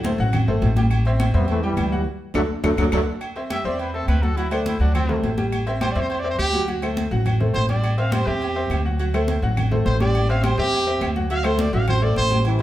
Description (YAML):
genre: latin, salsa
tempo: 208 BPM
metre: 4/4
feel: straight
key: unclear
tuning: A4 = 441 Hz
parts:
  - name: clear trombone section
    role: melody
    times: 0.0-3.0, 12.5-12.6 s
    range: A2 to B3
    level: -25 LUFS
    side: equal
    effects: none
  - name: upright bass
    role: bass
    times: 0.0-12.6 s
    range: G1 to E2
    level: -22 LUFS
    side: equal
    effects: none
  - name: agogo bells and timbales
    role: percussion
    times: 0.0-12.6 s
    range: none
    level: -32 LUFS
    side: right 3 dB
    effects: none
  - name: congas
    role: percussion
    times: 0.0-12.6 s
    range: none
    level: -28 LUFS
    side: equal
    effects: none
  - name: bright upright piano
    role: accompaniment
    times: 0.1-12.6 s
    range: F#3 to G5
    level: -26 LUFS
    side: left 1 dB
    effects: none
  - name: claves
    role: percussion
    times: 0.3-12.0 s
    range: none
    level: -38 LUFS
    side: left 3 dB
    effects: none
  - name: warm trumpet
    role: melody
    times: 3.5-12.4 s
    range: C4 to F5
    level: -25 LUFS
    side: right 1 dB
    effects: none
room: wet studio reverb, RT60 0.9 s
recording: heard from further back in the room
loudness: -19 LUFS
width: side -14 dB against mid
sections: 0.0-3.2 A section; 3.2-12.5 B section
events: band accent 2.1-3.2; drum fill 2.4-3.2; trumpet solo 3.2-12.5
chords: 0.0 D7; 0.9 Am7; 2.1 D; 3.2 D13; 4.4 D7; 5.5 Am7; 6.7 D7; 7.8 Am7; 9.0 D7; 10.1 Am7; 11.3 D7